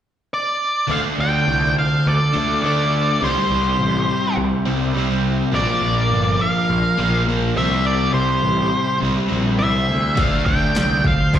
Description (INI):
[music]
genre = blues rock power trio and southern rock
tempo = 103 BPM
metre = 4/4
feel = straight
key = D minor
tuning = A4 = 440 Hz
[part]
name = octave-fuzz lead guitar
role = melody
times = 0.3-11.4 s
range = C5 to G5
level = -21 LUFS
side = equal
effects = distortion, slapback echo
[part]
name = bluesy overdriven lead guitar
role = second line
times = 0.9-11.4 s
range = G4 to D5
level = -31 LUFS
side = right 4 dB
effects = distortion, slapback echo
[part]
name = overdriven tonewheel organ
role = sustained chords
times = 0.9-11.4 s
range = C4 to B4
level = -36 LUFS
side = right 3 dB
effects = none
[part]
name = overdriven semi-hollow guitar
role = riff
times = 0.9-11.4 s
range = Bb2 to D4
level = -20 LUFS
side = left 1 dB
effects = slapback echo
[part]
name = fuzz picked electric bass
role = bass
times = 0.9-11.4 s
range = G1 to D2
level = -22 LUFS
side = equal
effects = overdrive
[part]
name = deep house drum kit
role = drums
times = 10.2-11.4 s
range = hi-hat, kick drum, snare drum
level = -20 LUFS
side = equal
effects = overdrive
[sound]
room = light reverb, digital ambience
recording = live gig heard through the venue's PA, recital hall reverb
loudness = -16 LUFS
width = side -10 dB against mid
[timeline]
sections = 0.9-11.4 A section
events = none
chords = 0.0 N.C.; 0.9 Dm; 3.2 C; 5.5 Bb; 7.6 C; 10.2 Dm